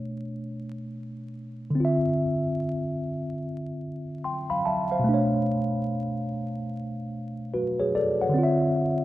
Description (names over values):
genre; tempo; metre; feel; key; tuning
hip hop; 73 BPM; 4/4; swing 63% on 16ths; unclear; A4 = 439 Hz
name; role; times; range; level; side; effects
mellow tine electric piano; solo; 0.0-9.0 s; B2 to C6; -25 LUFS; equal; medium stereo tremolo
room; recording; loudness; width
moderate plate reverb, RT60 3.6 s; rough home demo mix, vinyl crackle; -24 LUFS; side -15 dB against mid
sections
0.0-9.0 A section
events
none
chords
0.0 Bm9; 1.8 Dm9; 5.1 Bm9; 8.3 Dm9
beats
0.12 0.95 | 1.77 2.59 3.41 4.23 | 5.06 5.88 6.70 7.52 | 8.34